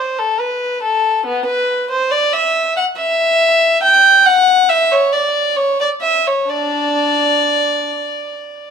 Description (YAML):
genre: classical, baroque-style suite movement for unaccompanied violin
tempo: 63-71 BPM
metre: 3/4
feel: rubato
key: D major from 3.8 s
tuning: A4 = 440 Hz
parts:
  - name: warm violin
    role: solo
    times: 0.0-8.7 s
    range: B3 to G5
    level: -12 LUFS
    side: equal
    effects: none
room: light reverb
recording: close, detailed microphones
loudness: -12 LUFS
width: side -6 dB against mid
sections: 0.0-8.7 A section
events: none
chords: none